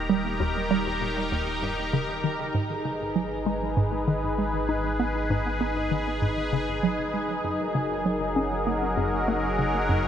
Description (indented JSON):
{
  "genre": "ambient, sequencer-driven space music",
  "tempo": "98 BPM",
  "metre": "4/4",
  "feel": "straight",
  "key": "G# minor",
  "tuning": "A4 = 440 Hz",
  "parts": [
    { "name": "sweeping resonant pad", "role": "sustained chords", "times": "0.0-10.1 s", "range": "D#3 to A#5", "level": "-27 LUFS", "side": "equal", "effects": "chorus" },
    { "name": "hollow square pluck", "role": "riff", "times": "0.0-10.1 s", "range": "D#2 to D#4", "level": "-28 LUFS", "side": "right 1 dB", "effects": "chorus, phaser, tape echo" },
    { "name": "round analog bass", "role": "bass", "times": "0.0-10.1 s", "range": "D#1 to G#1", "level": "-34 LUFS", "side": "equal", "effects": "none" }
  ],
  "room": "wet huge ambient reverb, RT60 7.6 s",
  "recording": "none",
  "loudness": "-24 LUFS",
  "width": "side -9 dB against mid",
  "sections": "0.0-10.1 A section",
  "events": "none",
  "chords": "0.0 D#; 2.5 G#m; 7.4 F#6"
}